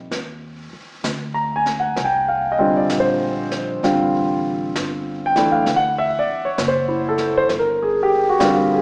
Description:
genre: jazz ballad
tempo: 65 BPM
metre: 4/4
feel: swing 66% on 8ths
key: unclear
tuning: A4 = 440 Hz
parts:
  - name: warm grand piano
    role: accompaniment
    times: 0.0-8.8 s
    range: D3 to Bb5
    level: -20 LUFS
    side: equal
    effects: none
  - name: upright bass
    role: bass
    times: 0.0-8.8 s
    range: F#1 to Eb2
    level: -34 LUFS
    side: equal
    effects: none
  - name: jazz brush drum kit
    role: drums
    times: 0.1-8.8 s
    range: brushed snare drum, hi-hat, snare drum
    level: -32 LUFS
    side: equal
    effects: none
room: moderate concert hall reverb, RT60 2.2 s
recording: recorded in a church or concert hall, small speaker sound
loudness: -20 LUFS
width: mono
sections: 0.1-8.8 A section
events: none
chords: 0.1 Eb6; 3.8 Am7; 5.7 D; 7.5 Gm7

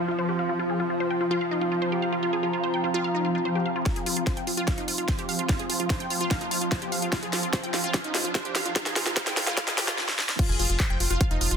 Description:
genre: psychedelic trance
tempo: 147 BPM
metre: 4/4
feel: straight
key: unclear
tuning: A4 = 440 Hz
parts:
  - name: swarming drone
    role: sustained chords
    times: 0.0-11.6 s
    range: F3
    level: -31 LUFS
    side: right 1 dB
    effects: built-in reverb, sidechain pumping
  - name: wide unison pluck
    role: riff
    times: 0.0-11.6 s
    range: Eb4 to G5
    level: -30 LUFS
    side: moving between left 4 dB and right 5 dB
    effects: auto-pan, sidechain pumping, digital delay
  - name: warbly tape-like pad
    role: texture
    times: 0.0-10.0 s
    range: C4 to C6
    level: -31 LUFS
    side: left 1 dB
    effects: chorus, built-in reverb, sidechain pumping
  - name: drum and bass drum kit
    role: drums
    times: 3.9-11.6 s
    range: crash cymbal, handclaps, hi-hat, snare drum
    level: -28 LUFS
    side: equal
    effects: overdrive
  - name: electronic kick drum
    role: drums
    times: 3.9-11.3 s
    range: none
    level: -26 LUFS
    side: equal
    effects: none
  - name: riser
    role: sound effects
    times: 6.1-10.0 s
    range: none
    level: -39 LUFS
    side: equal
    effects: none
  - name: round analog bass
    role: bass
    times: 10.5-11.6 s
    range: F1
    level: -26 LUFS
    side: equal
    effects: none
room: moderate digital room reverb, RT60 1.1 s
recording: dense, heavily limited modern master, high-pass filter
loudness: -24 LUFS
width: side -6 dB against mid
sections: 0.0-3.9 A section; 3.9-10.4 B section; 10.4-11.6 C section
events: filter sweep on synth arpeggio sound 0.0-3.9; build-up 3.9-10.4; drum fill 3.9-10.0, 10.0-10.4; filter sweep on synth drone 3.9-10.4; filter sweep 3.9-10.4; riser 6.1-10.0; drop 10.4-11.6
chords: 0.0 F5

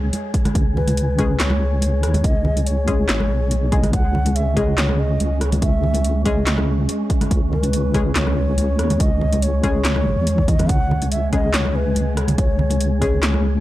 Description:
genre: deep dubstep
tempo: 142 BPM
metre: 4/4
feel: swing 53% on 16ths, half-time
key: C# minor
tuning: A4 = 440 Hz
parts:
  - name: deep soft wobble bass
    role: bass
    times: 0.0-13.6 s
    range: G#1 to E2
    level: -20 LUFS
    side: equal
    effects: chorus
  - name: wind-like tuned noise texture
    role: texture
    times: 0.0-13.6 s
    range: G#3 to G#4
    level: -28 LUFS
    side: right 2 dB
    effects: built-in reverb
  - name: deep house drum kit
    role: drums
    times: 0.1-13.4 s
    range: handclaps, hi-hat, rim click, snare drum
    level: -25 LUFS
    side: equal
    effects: overdrive
  - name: congas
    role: percussion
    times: 0.1-13.4 s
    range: none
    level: -26 LUFS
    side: equal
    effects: none
  - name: electronic kick drum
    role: drums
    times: 0.3-13.1 s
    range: none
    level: -20 LUFS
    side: equal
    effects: overdrive
  - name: mellow low ney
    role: melody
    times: 0.8-13.4 s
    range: B4 to F#5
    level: -26 LUFS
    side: left 1 dB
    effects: dub echo
  - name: filtered dub chord stab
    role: stabs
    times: 1.2-13.2 s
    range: G#3 to G#4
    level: -28 LUFS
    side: left 4 dB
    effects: chorus, dub echo
room: little or no reverb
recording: dry, gritty hardware recording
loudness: -16 LUFS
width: side -15 dB against mid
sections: 0.0-13.6 A section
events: none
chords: 0.0 C#5

